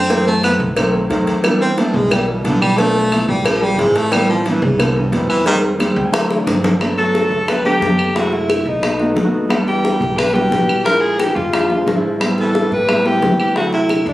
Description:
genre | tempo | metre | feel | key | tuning
Afro-Cuban jazz | 178 BPM | 4/4 | straight | G major from 6.8 s | A4 = 436 Hz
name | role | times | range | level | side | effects
breathy baritone saxophone | second line | 0.0-14.1 s | G2 to C4 | -20 LUFS | equal | none
upright bass | bass | 0.0-14.1 s | G1 to A2 | -24 LUFS | equal | none
warm concert grand piano | accompaniment | 0.1-14.0 s | D#3 to Ab5 | -18 LUFS | right 1 dB | none
cowbell and bongos | percussion | 0.1-14.1 s | none | -21 LUFS | left 2 dB | none
claves | percussion | 0.4-14.1 s | none | -25 LUFS | equal | none
breathy alto saxophone | melody | 7.0-14.1 s | D4 to B4 | -17 LUFS | equal | slapback echo, plate reverb
room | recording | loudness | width
light reverb | recorded on a phone in the room, studio reverb | -13 LUFS | side -16 dB against mid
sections
0.0-6.8 A section; 6.8-14.1 B section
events
baritone saxophone solo 0.0-6.8; grand piano fill 5.8-6.8, 9.0-9.5; drum fill 6.1-6.8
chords
0.1 F#m7b5; 0.8 B7b9; 1.4 Em7; 2.8 Bm7b5; 3.5 Bb9; 4.1 Am9; 5.5 Fm7; 6.1 D7; 6.8 Gmaj7; 8.2 F#m7b5; 8.8 B7; 9.5 Em7; 10.9 Bb7#11; 12.2 Am7; 13.6 D7

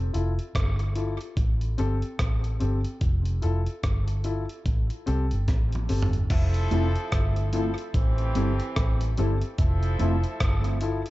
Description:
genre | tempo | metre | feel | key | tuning
dub reggae | 73 BPM | 4/4 | swing 60% on 16ths | F major | A4 = 440 Hz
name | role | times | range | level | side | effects
vintage muted fingered electric bass | bass | 0.0-11.0 s | F1 to C2 | -25 LUFS | equal | none
dark concert grand piano | stabs | 0.1-11.1 s | C4 to A4 | -33 LUFS | left 4 dB | tape echo
breakbeat sampler-style drum kit | drums | 0.1-11.1 s | crash cymbal, hi-hat, kick drum, rim click, snare drum, toms | -27 LUFS | equal | none
clear horn section | second line | 6.3-10.8 s | E3 to A4 | -34 LUFS | right 1 dB | tape echo
mellow electric guitar | accompaniment | 6.7-10.1 s | G3 to E4 | -33 LUFS | right 2 dB | analog chorus, tape echo
room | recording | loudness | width
digital ambience | dark, warm production, nothing above 7.7 kHz | -23 LUFS | side -17 dB against mid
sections
0.0-6.3 A section; 6.3-11.1 B section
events
break 0.0-6.3; drum fill 5.5-6.3; filter sweep 9.6-11.1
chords
0.0 Fmaj7; 1.4 Am7; 3.0 Fmaj7; 4.7 Am7; 6.3 Fmaj7; 7.9 Am7; 9.6 Fmaj7

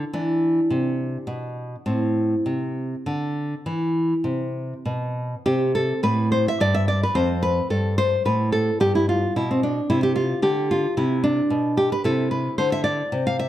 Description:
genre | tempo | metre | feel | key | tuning
classical, baroque-style dance for nylon-string guitar | 65-75 BPM (dotted quarters) | 12/8 | rubato | A minor, C major from 5.5 s | A4 = 439 Hz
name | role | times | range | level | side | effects
nylon-string guitar | solo | 0.0-13.5 s | F2 to F5 | -20 LUFS | equal | none
room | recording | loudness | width
moderate recital hall reverb, RT60 1.3 s | dark, warm production | -20 LUFS | side -12 dB against mid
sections
0.0-5.5 A section; 5.5-13.5 A section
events
none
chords
0.1 E5; 1.9 Am; 5.5 C5; 7.2 F; 8.8 G; 12.0 C

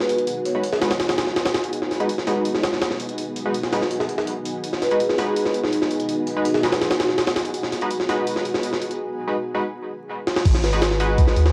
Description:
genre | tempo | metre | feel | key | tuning
drum and bass, jungle | 165 BPM | 4/4 | straight | G# minor | A4 = 437 Hz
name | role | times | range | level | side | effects
marimba with medium mallets | melody | 0.0-0.7, 4.8-6.7, 10.6-11.0 s | D#4 to C#5 | -28 LUFS | equal | cassette tape, dub echo
granular cloud pad | sustained chords | 0.0-11.5 s | B3 to G#4 | -30 LUFS | equal | built-in reverb, cassette tape
band-passed chord stab | stabs | 0.0-11.5 s | G#3 to B4 | -29 LUFS | equal | chorus, vintage 12-bit sampler grit, cassette tape, dub echo
jungle sampler-style drum kit | drums | 0.0-11.5 s | crash cymbal, hi-hat, kick drum, snare drum | -25 LUFS | equal | cassette tape
soft dub sub bass | bass | 10.5-11.5 s | G#1 to D#2 | -22 LUFS | equal | none
room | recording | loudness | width
wet studio reverb, RT60 0.6 s | home recording on cassette, vinyl crackle | -22 LUFS | mono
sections
0.0-10.5 A section; 10.5-11.5 B section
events
filter sweep on synth stab 0.0-10.5; drum fill 10.3; drop 10.5-11.5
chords
0.0 G#m7

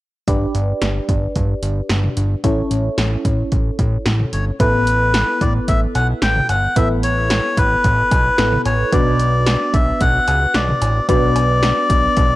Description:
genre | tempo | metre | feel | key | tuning
synth-pop | 111 BPM | 4/4 | straight | unclear | A4 = 440 Hz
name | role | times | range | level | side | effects
FM electric piano with auto-pan | accompaniment | 0.3-12.4 s | B3 to D5 | -23 LUFS | equal | phaser
fat analog bass | bass | 0.3-12.4 s | G1 to C#2 | -19 LUFS | equal | none
punchy analog drum machine | drums | 0.3-12.3 s | cowbell, hi-hat, kick drum, snare drum, toms | -20 LUFS | equal | none
melodica | melody | 4.3-12.4 s | B4 to G5 | -18 LUFS | left 1 dB | tape echo
room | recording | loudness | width
little or no reverb | dry, gritty hardware recording, cassette tape | -14 LUFS | side -17 dB against mid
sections
0.3-4.6 A section; 4.6-12.4 B section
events
none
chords
0.3 G; 2.4 A; 4.6 Asus2; 8.9 Bm

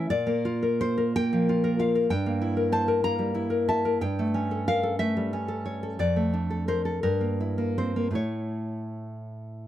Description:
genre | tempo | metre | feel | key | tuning
romantic piece for solo classical guitar | 51-64 BPM (dotted quarters) | 6/8 | rubato | unclear | A4 = 440 Hz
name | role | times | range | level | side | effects
nylon-string guitar | solo | 0.0-9.7 s | F2 to Bb5 | -24 LUFS | equal | none
room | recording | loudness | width
light reverb | none | -24 LUFS | side -12 dB against mid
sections
0.0-9.7 A section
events
none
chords
0.1 Bb; 2.1 Edim/G; 4.0 A7/G; 6.0 Dm/F; 7.1 Edim/G; 8.2 A

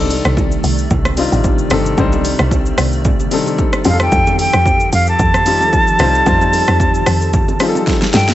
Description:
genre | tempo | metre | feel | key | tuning
amapiano | 112 BPM | 4/4 | swing 55% on 16ths | C dorian | A4 = 440 Hz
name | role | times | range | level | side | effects
warm grand piano | accompaniment | 0.0-8.3 s | G3 to C5 | -19 LUFS | left 4 dB | none
hollow soft pad | sustained chords | 0.0-8.3 s | C3 to D5 | -23 LUFS | right 1 dB | ensemble chorus, sidechain pumping
woody log drum bass | bass | 0.0-8.3 s | G1 to G2 | -17 LUFS | equal | none
deep house drum kit | drums | 0.1-8.3 s | hi-hat, kick drum, rim click, shaker, snare drum | -17 LUFS | equal | overdrive
bongos and congas | percussion | 0.1-8.3 s | none | -25 LUFS | right 4 dB | none
silver concert flute | melody | 3.9-8.3 s | F5 to A5 | -15 LUFS | equal | digital delay
room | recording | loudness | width
little or no reverb | nothing above 8.0 kHz | -11 LUFS | side -14 dB against mid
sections
0.0-8.3 A section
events
drum fill 7.9-8.3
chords
0.0 Cm69; 3.9 F9

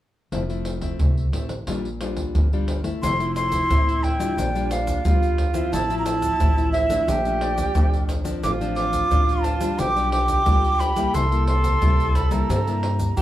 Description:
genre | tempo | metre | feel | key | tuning
samba and choro | 89 BPM | 4/4 | straight | F major | A4 = 441 Hz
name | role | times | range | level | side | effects
nylon-string guitar | accompaniment | 0.3-13.2 s | F2 to F4 | -28 LUFS | left 4 dB | none
upright bass | bass | 0.3-13.2 s | F1 to G2 | -27 LUFS | equal | none
surdo, pandeiro and egg shaker | percussion | 0.3-13.2 s | none | -23 LUFS | equal | none
breathy jazz flute | melody | 3.0-13.2 s | D5 to D6 | -24 LUFS | right 1 dB | none
breathy tenor saxophone | second line | 3.0-13.2 s | D4 to A4 | -27 LUFS | right 2 dB | none
room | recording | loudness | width
moderate studio reverb, RT60 0.7 s | band playing live in one room | -19 LUFS | side -13 dB against mid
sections
0.3-3.0 A section; 3.0-13.2 B section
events
none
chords
0.3 Fmaj7; 1.7 Bb6; 3.0 Fmaj7; 4.4 Bb6; 5.7 Fmaj7/A; 7.1 Bbmaj7; 8.4 F6/A; 9.8 G7/B; 11.1 C7

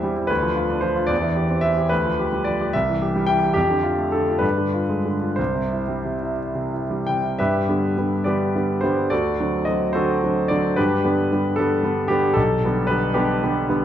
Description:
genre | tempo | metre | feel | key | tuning
classical, romantic character piece for solo piano | 57-78 BPM (dotted quarters) | 6/8 | rubato | C major, G major from 7.4 s | A4 = 440 Hz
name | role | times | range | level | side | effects
clear concert grand piano | solo | 0.0-13.8 s | B1 to G5 | -19 LUFS | equal | none
room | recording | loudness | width
wet recital hall reverb, RT60 1.5 s | dark, warm production | -19 LUFS | side -10 dB against mid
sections
0.0-7.4 A section; 7.4-13.8 B section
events
none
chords
0.3 Bdim/D; 1.1 C/E; 1.9 G7/D; 2.7 C; 3.6 Dm/F; 4.4 G7b9; 5.4 C; 7.4 G; 9.1 D7; 10.8 G; 12.4 G/B

